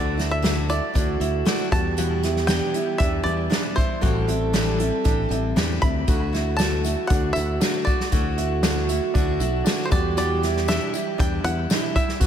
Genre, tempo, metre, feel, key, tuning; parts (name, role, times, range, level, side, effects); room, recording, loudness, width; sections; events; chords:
indie folk with a building arrangement; 117 BPM; 4/4; straight; E minor; A4 = 440 Hz
bluegrass banjo; melody; 0.0-12.3 s; C5 to B5; -29 LUFS; equal; slapback echo, tape echo
mellow French horn; second line; 0.0-12.3 s; D4 to A4; -28 LUFS; right 6 dB; slapback echo, tape echo
picked steel-string acoustic guitar; accompaniment; 0.0-12.3 s; E2 to G4; -29 LUFS; left 8 dB; slapback echo
warm upright piano; arpeggios; 0.0-12.3 s; D4 to F#4; -30 LUFS; right 6 dB; slapback echo, tape echo
fingered electric bass; bass; 0.0-12.3 s; A1 to E2; -25 LUFS; equal
unplugged drum kit; drums; 0.2-12.3 s; hi-hat, kick drum, snare drum; -24 LUFS; equal
tambourine; percussion; 6.1-12.3 s; -38 LUFS; left 16 dB
light reverb, small room ambience; -20 LUFS; side -9 dB against mid
0.0-12.3 A section
0.0 Dadd9; 1.7 Em; 4.0 Am7; 6.1 Dadd9; 9.9 Em